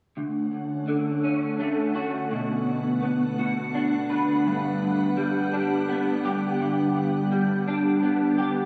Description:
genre	rock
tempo	56 BPM (dotted quarters)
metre	6/8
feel	straight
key	D major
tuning	A4 = 440 Hz
part	soft additive organ-like pad	sustained chords	0.2-8.7 s	D3 to F#5	-30 LUFS	equal	ensemble chorus, built-in reverb
part	electric guitar through a small old amp	arpeggios	0.2-8.7 s	D2 to B4	-26 LUFS	equal	ensemble chorus, diffuse ambient delay
room	wet huge ambient reverb, RT60 4.1 s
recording	dreamy mix soaked in reverb, small room ambience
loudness	-25 LUFS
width	mono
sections	0.2-8.7 A section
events	none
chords	0.2 Dmaj7; 2.3 Bm7; 4.5 Gmaj7

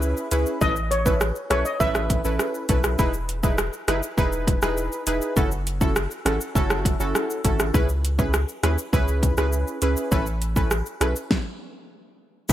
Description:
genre	dancehall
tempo	101 BPM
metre	4/4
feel	straight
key	unclear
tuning	A4 = 441 Hz
part	synth brass stab	accompaniment	0.0-12.5 s	C#4 to B4	-26 LUFS	right 1 dB	chorus
part	punchy sub bass	bass	0.0-12.5 s	E1 to D#2	-25 LUFS	equal	none
part	pop drum kit	drums	0.0-12.5 s	hi-hat, kick drum, rim click, shaker, snare drum	-23 LUFS	equal	overdrive
part	steel pan	melody	0.6-2.2 s	B4 to E5	-26 LUFS	equal	none
part	warm analog pad	sustained chords	12.5 s	none	barely audible	none	none
part	tube shaker	percussion	12.5 s	none	-27 LUFS	left 8 dB	none
room	light reverb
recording	bright 1980s-style digital production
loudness	-20 LUFS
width	side -13 dB against mid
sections	0.0-12.5 A section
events	stop 11.3-12.5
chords	0.0 C#m7; 0.6 Aadd9; 3.0 Emaj7; 5.4 F#m7; 7.7 C#m7; 10.1 Aadd9

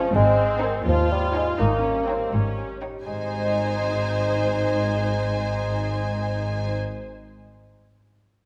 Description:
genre	cinematic, playful, whimsical film cue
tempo	82 BPM (dotted quarters)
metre	6/8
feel	straight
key	Ab major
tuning	A4 = 437 Hz
part	rich studio violin section	melody	0.0-6.7 s	G5 to Ab5	-38 LUFS	equal	none
part	warm studio violin section	second line	0.0-6.7 s	Eb4 to Db5	-33 LUFS	equal	none
part	mellow bassoon	accompaniment	0.0-6.7 s	Eb3 to Bb3	-28 LUFS	equal	none
part	warm studio viola section	accompaniment	0.0-6.8 s	C4 to F4	-33 LUFS	equal	none
part	concert harp	arpeggios	0.0-7.1 s	Ab2 to Eb5	-37 LUFS	equal	none
part	warm studio cello section	bass	0.1-6.7 s	Eb2 to Ab2	-31 LUFS	equal	none
part	warm studio double bass section	bass	0.1-6.8 s	Ab1 to Eb2	-30 LUFS	equal	none
room	wet scoring stage reverb, RT60 1.9 s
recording	none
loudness	-23 LUFS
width	mono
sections	0.0-3.1 A section; 3.1-6.0 B section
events	none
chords	0.1 Ab; 1.6 Eb7/Ab; 3.1 Ab

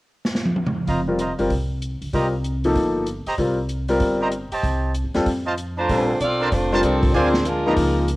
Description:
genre	jazz, big band swing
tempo	191 BPM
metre	4/4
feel	swing 64% on 8ths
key	Bb major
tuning	A4 = 443 Hz
part	swinging big-band drum kit	drums	0.3-8.2 s	hi-hat, kick drum, snare drum, toms	-25 LUFS	equal	cassette tape
part	clear trumpet section	stabs	0.9-7.7 s	D4 to Bb5	-26 LUFS	right 2 dB	none
part	upright bass	bass	0.9-8.2 s	F1 to F2	-25 LUFS	equal	none
part	clear grand piano	accompaniment	1.1-8.1 s	F3 to D5	-21 LUFS	left 1 dB	none
part	warm saxophone section	melody	5.8-8.1 s	F3 to D5	-22 LUFS	equal	cassette tape
room	light reverb, small room ambience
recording	home recording on cassette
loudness	-19 LUFS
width	side -19 dB against mid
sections	0.9-5.9 A section; 5.9-8.2 B section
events	drum fill 0.2-0.9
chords	0.0 N.C.; 0.9 F7sus4; 2.1 Cm7; 4.6 Cm; 5.3 F7; 5.9 Bbmaj9; 7.1 Dm7b5

